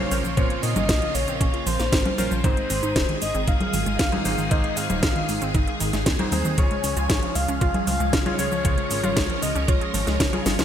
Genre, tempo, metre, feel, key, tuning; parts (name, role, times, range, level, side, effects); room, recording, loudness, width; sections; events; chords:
italo disco; 116 BPM; 4/4; straight; A4 = 440 Hz
soft octave-layered synth lead; melody; 0.0-10.4 s; C5 to F5; -29 LUFS; left 1 dB; chorus, ping-pong delay
phased string machine; sustained chords; 0.0-10.6 s; Db3 to Bb4; -29 LUFS; equal; ensemble chorus, phaser
warbly dusty pluck; arpeggios; 0.0-10.6 s; Eb3 to Ab4; -31 LUFS; right 2 dB; chorus, ping-pong delay
warm electric grand piano; stabs; 0.0-10.6 s; Ab2 to Db5; -32 LUFS; left 1 dB; lush chorus
chorused synth bass; bass; 0.1-10.6 s; Eb1 to Bb2; -27 LUFS; equal
house drum kit; drums; 0.1-10.6 s; cabasa, congas, hi-hat, snare drum; -26 LUFS; equal; overdrive, gated reverb
electronic kick drum; drums; 0.4-10.3 s; -23 LUFS; equal
light reverb; bright 1980s-style digital production; -20 LUFS; side -9 dB against mid
0.0-10.6 A section
drum fill 10.5
0.0 Bbmadd9; 2.4 Ab; 6.6 Db